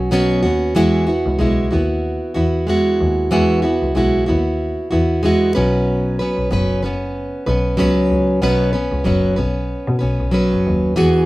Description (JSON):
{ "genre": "acoustic pop", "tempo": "94 BPM", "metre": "4/4", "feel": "swing 55% on 16ths", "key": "E major", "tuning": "A4 = 440 Hz", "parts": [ { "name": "fingerpicked plugged-in steel-string acoustic guitar", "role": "accompaniment", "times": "0.0-11.3 s", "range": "B2 to B4", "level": "-16 LUFS", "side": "right 1 dB", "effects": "none" }, { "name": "clear double bass", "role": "bass", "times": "0.0-11.3 s", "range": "F#1 to B2", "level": "-20 LUFS", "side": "left 1 dB", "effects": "none" } ], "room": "moderate studio reverb, RT60 0.8 s", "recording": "none", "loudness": "-15 LUFS", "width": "side -18 dB against mid", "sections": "0.8-11.3 A section", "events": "none", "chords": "0.0 Bsus2; 0.8 Eadd9; 5.6 Bsus2" }